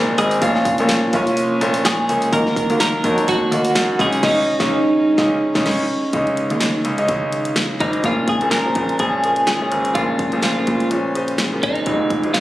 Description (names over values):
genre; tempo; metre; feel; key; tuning
piano-driven pop; 126 BPM; 4/4; swing 56% on 16ths; Bb minor; A4 = 436 Hz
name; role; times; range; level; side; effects
twelve-string electric guitar; melody; 0.0-12.4 s; Eb4 to Bb4; -19 LUFS; right 1 dB; phaser
clear upright piano; accompaniment; 0.0-12.4 s; Ab2 to F5; -21 LUFS; equal; none
airy breathy pad; sustained chords; 0.0-12.4 s; C3 to F5; -30 LUFS; equal; none
bright concert grand piano; bass; 0.0-12.4 s; F1 to Gb2; -22 LUFS; left 1 dB; none
pop drum kit; drums; 0.2-12.4 s; crash cymbal, handclaps, hi-hat, kick drum, snare drum; -23 LUFS; equal; none
room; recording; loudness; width
light reverb; recorded on a phone in the room, club reverb, compression; -16 LUFS; side -15 dB against mid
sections
0.0-6.1 A section; 6.1-8.0 B section; 8.0-12.4 C section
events
band accent 4.2-6.1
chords
0.4 Bbm; 2.3 Ebm; 4.0 Dbsus2; 8.0 Bbm7; 11.9 Fm